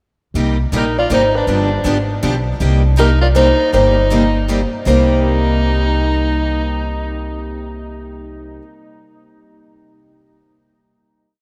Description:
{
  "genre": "acoustic string swing (jazz manouche)",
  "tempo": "160 BPM",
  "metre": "3/4",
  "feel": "swing 61% on 8ths",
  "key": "C minor",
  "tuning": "A4 = 440 Hz",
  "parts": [
    { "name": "upright bass", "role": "bass", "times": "0.3-8.6 s", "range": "G1 to C2", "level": "-19 LUFS", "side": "equal", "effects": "none" },
    { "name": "picked steel-string acoustic guitar", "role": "accompaniment", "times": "0.4-8.6 s", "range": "C3 to G4", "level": "-24 LUFS", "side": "equal", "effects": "none" },
    { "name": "picked steel-string acoustic guitar", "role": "accompaniment", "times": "0.4-8.6 s", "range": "C3 to G4", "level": "-28 LUFS", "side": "equal", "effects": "none" },
    { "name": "open-back banjo", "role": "melody", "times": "0.8-8.6 s", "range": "Bb4 to D5", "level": "-20 LUFS", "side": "equal", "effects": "none" },
    { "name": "clear soprano saxophone", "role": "second line", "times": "0.8-7.9 s", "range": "D4 to F4", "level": "-24 LUFS", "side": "equal", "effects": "none" }
  ],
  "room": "wet cathedral reverb, RT60 5.5 s",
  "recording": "in a vast, echoing space",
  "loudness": "-15 LUFS",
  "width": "mono",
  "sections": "0.3-4.9 A section; 4.9-7.1 final chord",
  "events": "none",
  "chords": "0.3 Cm7; 1.5 G7; 2.6 Cm7"
}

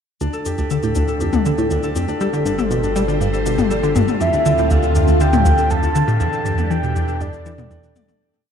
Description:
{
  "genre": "ambient, sequencer-driven space music",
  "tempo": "120 BPM",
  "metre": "4/4",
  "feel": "straight",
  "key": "D minor",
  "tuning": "A4 = 442 Hz",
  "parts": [
    { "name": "phased string machine", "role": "sustained chords", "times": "0.2-8.2 s", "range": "D3 to C5", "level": "-26 LUFS", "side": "equal", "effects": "ensemble chorus, phaser, shimmer reverb" },
    { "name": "concert harp", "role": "arpeggios", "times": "0.2-8.5 s", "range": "D4 to D5", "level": "-24 LUFS", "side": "left 2 dB", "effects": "auto-pan, shimmer reverb, ping-pong delay" },
    { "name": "tight sequenced synth", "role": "riff", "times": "0.2-8.1 s", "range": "D2 to G3", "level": "-19 LUFS", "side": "equal", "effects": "chorus, phaser, ping-pong delay" },
    { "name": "round analog bass", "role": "bass", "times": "0.2-8.2 s", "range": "G1 to E2", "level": "-23 LUFS", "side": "right 1 dB", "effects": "none" },
    { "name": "electronic cabasa and toms", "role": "percussion", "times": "0.2-8.2 s", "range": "none", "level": "-24 LUFS", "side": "left 6 dB", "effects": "ping-pong delay" },
    { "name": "soft octave-layered synth lead", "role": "melody", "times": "4.2-8.0 s", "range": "D5 to A5", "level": "-21 LUFS", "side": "equal", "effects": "chorus, shimmer reverb, ping-pong delay" }
  ],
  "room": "wet concert hall reverb, RT60 2.2 s",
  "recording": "dark, warm production",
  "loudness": "-15 LUFS",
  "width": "side -8 dB against mid",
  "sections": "0.2-8.2 A section",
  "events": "fade-in on string machine 0.2-8.2; fade-in on analog synth bass 0.2-8.2; fade-out 5.5-8.2",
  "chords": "0.2 Dm7; 2.2 G7sus4; 4.2 Dm7; 6.2 Em7"
}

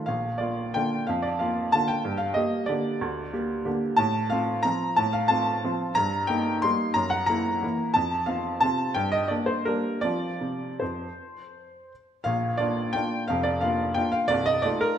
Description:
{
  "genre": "classical, piano waltz",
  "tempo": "156-196 BPM",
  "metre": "3/4",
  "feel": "rubato",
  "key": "Bb major",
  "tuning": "A4 = 440 Hz",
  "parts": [
    { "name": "bright upright piano", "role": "solo", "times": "0.0-15.0 s", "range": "C1 to C6", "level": "-23 LUFS", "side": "equal", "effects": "none" }
  ],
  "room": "wet recital hall reverb, RT60 1.7 s",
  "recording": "none",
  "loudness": "-23 LUFS",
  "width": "side -9 dB against mid",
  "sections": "0.0-12.3 A section; 12.3-15.0 A section",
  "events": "none",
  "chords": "0.1 Bb; 2.0 Gm; 4.0 F/A; 6.0 Eb/G; 7.0 Gb7; 8.0 F; 9.0 Gm; 10.0 F5; 12.3 Bb; 14.3 F7/C"
}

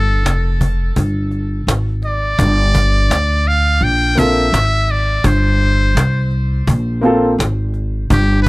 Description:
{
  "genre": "hip hop, jazz-hop",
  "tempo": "84 BPM",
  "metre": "4/4",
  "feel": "swing 60% on 16ths",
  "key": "G dorian",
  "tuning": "A4 = 440 Hz",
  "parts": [
    { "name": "trumpet with metal mute", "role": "melody", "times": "0.0-8.5 s", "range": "G4 to G5", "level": "-18 LUFS", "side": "equal", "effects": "tape echo" },
    { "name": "upright bass", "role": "bass", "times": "0.0-8.5 s", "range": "F1 to D2", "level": "-15 LUFS", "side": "equal", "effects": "none" },
    { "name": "cajon", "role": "drums", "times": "0.3-8.5 s", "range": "none", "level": "-18 LUFS", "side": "equal", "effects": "none" },
    { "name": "dark upright piano", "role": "accompaniment", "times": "4.2-7.3 s", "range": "Bb3 to A4", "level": "-13 LUFS", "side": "equal", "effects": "none" }
  ],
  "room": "little or no reverb",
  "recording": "dark, warm production",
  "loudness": "-13 LUFS",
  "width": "side -22 dB against mid",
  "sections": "0.0-8.5 A section",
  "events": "none",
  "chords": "0.0 Gm11"
}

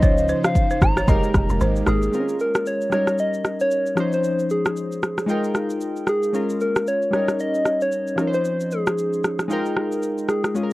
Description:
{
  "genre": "afrobeats",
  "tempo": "114 BPM",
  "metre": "4/4",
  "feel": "swing 58% on 16ths",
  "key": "unclear",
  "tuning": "A4 = 439 Hz",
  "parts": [
    { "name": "soft struck synth lead", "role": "melody", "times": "0.0-10.7 s", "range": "Ab4 to Bb5", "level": "-23 LUFS", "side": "equal", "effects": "chorus, tape echo" },
    { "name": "warm analog keys", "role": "accompaniment", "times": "0.0-10.7 s", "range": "F3 to G5", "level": "-24 LUFS", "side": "equal", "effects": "chorus" },
    { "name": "airy breathy pad", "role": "sustained chords", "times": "0.0-2.1, 10.6-10.7 s", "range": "Db3 to C5", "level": "-31 LUFS", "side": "right 1 dB", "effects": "chorus" },
    { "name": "balafon", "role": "riff", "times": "0.0-2.0 s", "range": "Ab4 to Eb5", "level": "-28 LUFS", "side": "right 2 dB", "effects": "tape echo" },
    { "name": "woody log drum bass", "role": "bass", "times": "0.0-2.1 s", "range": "F1 to Db2", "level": "-22 LUFS", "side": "equal", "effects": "none" },
    { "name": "afro-pop drum kit", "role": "drums", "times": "0.0-10.7 s", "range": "kick drum, rim click, shaker", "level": "-20 LUFS", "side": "equal", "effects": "none" }
  ],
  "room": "light reverb",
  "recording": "worn, warbling old tape, cassette tape, warbly pitch drift",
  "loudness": "-19 LUFS",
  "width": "side -18 dB against mid",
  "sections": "0.0-2.1 A section; 2.1-10.7 B section",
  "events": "break 2.1-10.6",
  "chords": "0.0 Dbmaj9; 1.1 Fm11; 2.1 Bbm7; 2.9 Eb7; 4.0 Dbmaj9; 5.3 Fm11; 6.3 Bbm7; 7.1 Eb7; 8.2 Dbmaj9; 9.5 Fm11"
}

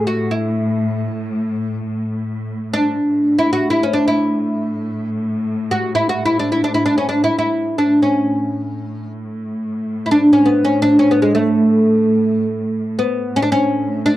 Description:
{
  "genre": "Arabic maqam ensemble",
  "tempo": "free time",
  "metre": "none",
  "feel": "none",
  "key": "A maqam ajam",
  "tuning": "A4 = 440 Hz",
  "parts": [
    { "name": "oud", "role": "melody", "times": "0.0-14.2 s", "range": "G#3 to F#4", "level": "-15 LUFS", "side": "equal", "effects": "none" },
    { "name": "muted chamber cello section", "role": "drone", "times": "0.0-14.2 s", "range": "A2", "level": "-23 LUFS", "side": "left 1 dB", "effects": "none" }
  ],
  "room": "light reverb",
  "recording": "dry, close 1970s-style studio recording",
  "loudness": "-15 LUFS",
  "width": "side -14 dB against mid",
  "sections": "0.0-14.2 A section",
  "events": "none",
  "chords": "none"
}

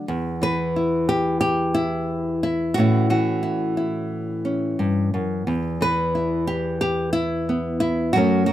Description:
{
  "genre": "folk, solo fingerstyle acoustic guitar",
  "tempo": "89 BPM",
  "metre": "4/4",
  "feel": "straight",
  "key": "E dorian",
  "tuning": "A4 = 443 Hz",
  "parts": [
    { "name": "nylon-string guitar", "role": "solo", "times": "0.0-8.5 s", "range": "E2 to B4", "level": "-20 LUFS", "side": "equal", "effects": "none" }
  ],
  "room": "moderate small room reverb, RT60 0.5 s",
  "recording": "none",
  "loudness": "-20 LUFS",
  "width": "side -12 dB against mid",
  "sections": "0.0-8.5 A section",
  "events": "none",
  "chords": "0.1 N.C.; 2.8 A; 5.5 E5"
}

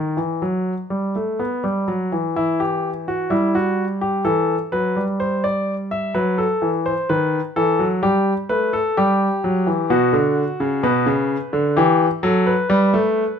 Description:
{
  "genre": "classical, baroque-style two-part invention for grand piano",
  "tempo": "64 BPM",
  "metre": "4/4",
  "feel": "straight",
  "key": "E minor",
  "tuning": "A4 = 440 Hz",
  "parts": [
    { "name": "clear concert grand piano", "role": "solo", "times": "0.0-13.4 s", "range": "B2 to E5", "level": "-17 LUFS", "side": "equal", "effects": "none" }
  ],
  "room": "light reverb",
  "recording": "minimal, uncompressed stereo recording",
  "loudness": "-17 LUFS",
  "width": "side -7 dB against mid",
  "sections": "0.0-2.4 A section; 2.4-13.4 B section",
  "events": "none",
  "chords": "0.0 B (rootless); 2.4 Em; 4.2 F#m7b5/E; 6.2 B7; 8.0 Em/G; 9.9 Bm; 11.8 Emadd11"
}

